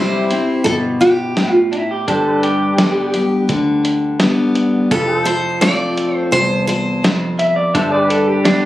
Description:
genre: honky-tonk and classic country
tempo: 85 BPM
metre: 4/4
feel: straight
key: unclear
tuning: A4 = 439 Hz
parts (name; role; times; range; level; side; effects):
- picked steel-string acoustic guitar; melody; 0.0-7.3 s; G4 to D5; -16 LUFS; right 1 dB; none
- picked steel-string acoustic guitar; accompaniment; 0.0-8.7 s; E2 to G4; -18 LUFS; left 2 dB; none
- pedal steel guitar; sustained chords; 0.0-8.7 s; D4 to C5; -23 LUFS; left 1 dB; none
- vintage muted fingered electric bass; bass; 0.0-8.7 s; F1 to D2; -26 LUFS; equal; none
- lo-fi sampler-style drum kit; drums; 0.3-8.6 s; hi-hat, kick drum, snare drum; -19 LUFS; equal; none
- electric guitar through a small old amp; second line; 1.7-3.1, 7.4-8.7 s; D4 to E5; -17 LUFS; right 1 dB; tape echo
room: light reverb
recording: recorded on a phone in the room, studio ambience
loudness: -13 LUFS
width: side -14 dB against mid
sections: 0.0-8.7 A section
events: none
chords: 0.0 C; 2.1 G; 4.9 F; 7.7 G

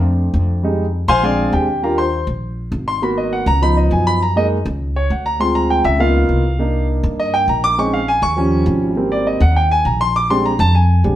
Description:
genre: Afro-Cuban jazz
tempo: 202 BPM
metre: 4/4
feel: straight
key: Eb major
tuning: A4 = 441 Hz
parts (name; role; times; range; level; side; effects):
- warm grand piano; accompaniment; 0.0-11.2 s; F3 to D6; -16 LUFS; equal; none
- upright bass; bass; 0.0-11.2 s; Ab1 to G2; -17 LUFS; equal; none
room: wet studio reverb, RT60 0.8 s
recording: heard from further back in the room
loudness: -14 LUFS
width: side -12 dB against mid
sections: 0.0-1.8 A section; 1.8-11.2 A section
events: grand piano solo 0.0-11.2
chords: 0.0 Bbmaj7 (rootless); 0.6 Fm7; 1.2 Bb7; 1.8 Ebmaj9; 3.0 Abm9; 3.6 Db7; 4.2 Gb6; 5.4 Dm7b5; 6.0 Db13; 6.6 Cm9; 7.8 Bbm11; 8.4 Eb9; 9.0 Abmaj9; 10.2 Bb13

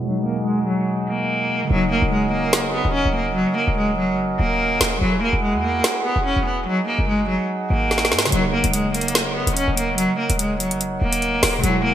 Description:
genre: hip hop, drill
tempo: 145 BPM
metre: 4/4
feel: half-time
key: Eb phrygian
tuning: A4 = 442 Hz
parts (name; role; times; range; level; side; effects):
- clear cello; melody; 0.0-11.9 s; Gb3 to Db4; -21 LUFS; equal; low-pass filter, ping-pong delay
- mellow tine electric piano; accompaniment; 0.0-5.0, 8.3-11.9 s; Cb3 to E4; -27 LUFS; left 1 dB; medium stereo tremolo, low-pass filter
- mellow accordion; sustained chords; 0.0-11.9 s; G#3 to F#5; -26 LUFS; right 3 dB; none
- short 808-style bass; bass; 1.7-11.9 s; Eb1 to Ab2; -25 LUFS; equal; none
- drill drum kit; drums; 2.5-11.7 s; hi-hat, snare drum; -21 LUFS; equal; gated reverb
room: moderate plate reverb, RT60 1.8 s, studio reverb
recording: bright 1980s-style digital production, low-pass filter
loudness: -18 LUFS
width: side -11 dB against mid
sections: 0.0-1.7 A section; 1.7-11.9 B section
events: filter sweep 0.0-1.7; hi-hats muted 1.7-8.3; drum fill 7.9-8.3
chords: 0.0 Abm7; 1.7 Ebm7; 5.0 Eadd9; 6.7 Ab5; 8.3 Ebm7

